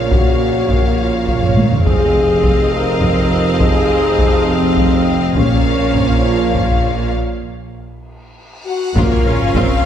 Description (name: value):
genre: cinematic, epic orchestral film score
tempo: 68 BPM (dotted quarters)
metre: 6/8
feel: straight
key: Bb minor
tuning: A4 = 440 Hz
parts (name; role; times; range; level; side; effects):
- warm symphonic violin section; melody; 0.0-9.6 s; F4 to F5; -25 LUFS; left 4 dB; none
- rich symphonic violin section; second line; 0.0-9.9 s; Db5 to Gb5; -25 LUFS; left 2 dB; none
- rich symphonic viola section; accompaniment; 0.0-9.8 s; Bb3 to Db4; -24 LUFS; equal; none
- clear trombone section; sustained chords; 0.0-9.9 s; Db3 to Eb4; -25 LUFS; right 4 dB; none
- mellow French horn section; sustained chords; 0.0-9.9 s; C4 to Bb4; -18 LUFS; left 1 dB; none
- clear symphonic cello section; bass; 0.0-9.6 s; F2 to Bb2; -23 LUFS; right 2 dB; none
- rich symphonic double bass section; bass; 0.0-9.9 s; F1 to Bb1; -23 LUFS; right 2 dB; none
- warm tuba; bass; 0.0-9.6 s; F1 to Bb1; -24 LUFS; right 2 dB; none
- taiko ensemble; drums; 0.1-9.9 s; none; -17 LUFS; equal; none
- cymbal swell and sub drop; sound effects; 8.3-9.9 s; none; -28 LUFS; left 1 dB; none
- rich symphonic string section; sustained chords; 8.9-9.9 s; Db4 to Db5; -24 LUFS; left 1 dB; none
room: wet scoring stage reverb, RT60 1.8 s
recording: heard from further back in the room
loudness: -12 LUFS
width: side -9 dB against mid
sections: 0.0-9.0 A section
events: drum fill 1.4-1.9, 8.5-9.0; break 7.1-9.0; cymbal swell 8.3-9.0; impact 9.0-9.9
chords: 0.0 Bbm; 1.9 Fm7; 5.4 Bbm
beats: | 0.11 0.98 | 1.85 2.72 | 3.60 4.47 | 5.35 6.24 | 7.15 8.05 | 8.96 9.84